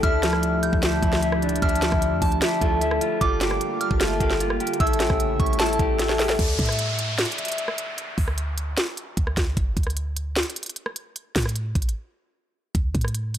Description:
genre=hip hop, trap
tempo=151 BPM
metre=4/4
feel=half-time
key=D harmonic minor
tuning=A4 = 437 Hz
part: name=steel-string zither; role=melody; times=0.0-9.3 s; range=G3 to E5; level=-28 LUFS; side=left 3 dB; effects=low-pass filter, tape echo
part: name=soft synth bell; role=second line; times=0.0-6.0 s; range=A5 to G6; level=-29 LUFS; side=right 3 dB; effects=chorus, tape echo
part: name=mellow electric guitar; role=accompaniment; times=0.0-6.4 s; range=F3 to G4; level=-26 LUFS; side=equal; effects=none
part: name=airy breathy pad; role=sustained chords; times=0.0-6.4 s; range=C#3 to G4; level=-33 LUFS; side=right 1 dB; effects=chorus, phaser
part: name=clean 808-style bass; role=bass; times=0.0-13.4 s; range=G1 to A2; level=-27 LUFS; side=equal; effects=none
part: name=trap drum kit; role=drums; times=0.0-13.4 s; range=crash cymbal, hi-hat, kick drum, rim click, snare drum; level=-24 LUFS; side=equal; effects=none
part: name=downlifter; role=sound effects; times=6.4-9.6 s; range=none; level=-30 LUFS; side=right 1 dB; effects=none
room=little or no reverb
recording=dry, gritty hardware recording, transformer saturation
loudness=-21 LUFS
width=side -10 dB against mid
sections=0.0-6.4 A section; 6.4-13.4 B section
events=drum fill 6.0-6.4; break 8.0-13.4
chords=0.0 Dmadd9; 3.2 Gm7; 4.8 A7; 6.4 Dsus2; 9.6 N.C.; 12.7 D5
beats=| 0.03 0.43 0.83 1.23 | 1.62 2.02 2.42 2.81 | 3.21 3.61 4.01 4.40 | 4.80 5.20 5.60 5.99 | 6.39 6.79 7.18 7.58 | 7.98 8.38 8.78 9.17 | 9.57 9.97 10.36 10.76 | 11.16 11.56 11.95 12.35 | 12.75 13.14

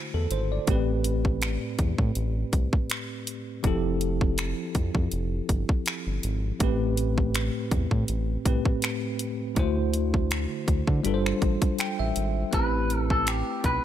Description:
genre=contemporary R&B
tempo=81 BPM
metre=4/4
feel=swing 54% on 16ths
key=A minor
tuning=A4 = 440 Hz
part: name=bell-like tine electric piano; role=accompaniment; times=0.0-13.8 s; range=A2 to G5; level=-29 LUFS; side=equal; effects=medium stereo tremolo
part: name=round analog bass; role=bass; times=0.1-13.8 s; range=F1 to D3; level=-28 LUFS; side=equal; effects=none
part: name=trap drum kit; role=drums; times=0.3-13.8 s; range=finger snaps, hi-hat, kick drum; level=-27 LUFS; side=equal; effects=overdrive
part: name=clean electric guitar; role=melody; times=12.5-13.8 s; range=G4 to B4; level=-27 LUFS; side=equal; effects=tape echo
room=little or no reverb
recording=none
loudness=-24 LUFS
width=side -11 dB against mid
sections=0.0-12.5 A section; 12.5-13.8 B section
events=break 0.0-0.7; tine electric piano fill 11.4-12.5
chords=0.0 D7; 0.7 Am9; 3.6 Fmaj9; 6.6 Am9; 9.6 D7; 11.0 G7sus4; 12.5 Am9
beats=| 0.68 1.42 2.16 2.90 | 3.64 4.38 5.12 5.86 | 6.60 7.34 8.08 8.82 | 9.56 10.31 11.05 11.79 | 12.53 13.27

